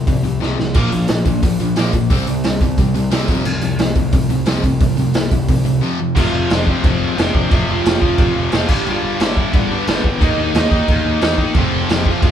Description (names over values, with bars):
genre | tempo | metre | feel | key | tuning
punk rock | 178 BPM | 4/4 | straight | unclear | A4 = 440 Hz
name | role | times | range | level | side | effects
distorted electric guitar | riff | 0.0-12.3 s | F2 to Eb4 | -21 LUFS | left 8 dB | overdrive
fuzz picked electric bass | bass | 0.0-12.3 s | F1 to E2 | -21 LUFS | right 1 dB | overdrive
raw garage drum kit | drums | 0.1-12.3 s | crash cymbal, hi-hat, kick drum, snare drum | -17 LUFS | right 1 dB | none
sludgy distorted guitar | riff | 0.7-6.1, 11.5-12.3 s | F2 to C4 | -22 LUFS | right 8 dB | overdrive
crunchy overdriven guitar | melody | 6.2-12.3 s | B3 to A5 | -23 LUFS | right 4 dB | none
heavy high-gain guitar | riff | 6.2-12.3 s | F2 to Eb4 | -22 LUFS | equal | distortion
room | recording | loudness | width
moderate studio reverb, RT60 0.6 s | band playing live in one room | -14 LUFS | side -9 dB against mid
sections
0.0-6.2 A section; 6.2-12.3 B section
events
drum fill 0.4-0.7; break 5.8-6.2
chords
0.0 F5/C; 0.7 Bb5; 2.1 C5; 3.3 F5/C; 6.2 F5; 8.7 G; 10.2 Eb5; 11.6 F